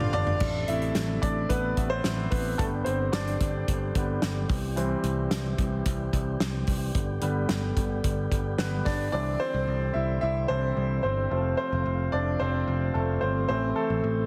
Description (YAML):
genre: piano-driven pop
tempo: 110 BPM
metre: 4/4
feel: straight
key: unclear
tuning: A4 = 442 Hz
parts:
  - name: clear concert grand piano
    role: accompaniment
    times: 0.0-14.3 s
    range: C3 to E5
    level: -31 LUFS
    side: equal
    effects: none
  - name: tonewheel organ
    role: sustained chords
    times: 0.0-14.3 s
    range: C3 to G4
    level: -39 LUFS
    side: equal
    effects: overdrive, fast rotary speaker
  - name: picked electric bass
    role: bass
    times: 0.0-14.3 s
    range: F1 to C2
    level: -32 LUFS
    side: equal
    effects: none
  - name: natural country drum kit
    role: drums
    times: 0.0-9.0 s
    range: crash cymbal, hi-hat, kick drum, snare drum, toms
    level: -32 LUFS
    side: equal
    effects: none
room: light reverb, studio ambience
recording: heavily compressed radio sound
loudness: -27 LUFS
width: mono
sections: 0.4-9.1 A section; 9.1-14.3 B section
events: drum fill 0.0-0.4; grand piano solo 0.4-9.1, 9.1-14.3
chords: 0.4 Amadd9; 2.6 G; 4.5 C; 7.0 G; 9.1 Cadd9; 11.3 F; 13.5 Am